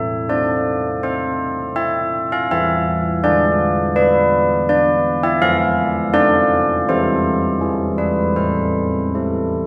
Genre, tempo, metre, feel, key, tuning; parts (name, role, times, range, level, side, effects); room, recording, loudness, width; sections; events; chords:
classical, tune for church bells; 81 BPM; 4/4; straight; A minor; A4 = 445 Hz
carillon bells; solo; 0.0-9.7 s; E3 to F5; -18 LUFS; equal
wet concert hall reverb, RT60 2.2 s; heard from further back in the room; -18 LUFS; mono
0.0-9.7 A section
0.0 Am; 2.5 E7; 5.4 F; 6.9 Am/E; 7.6 E; 8.4 Am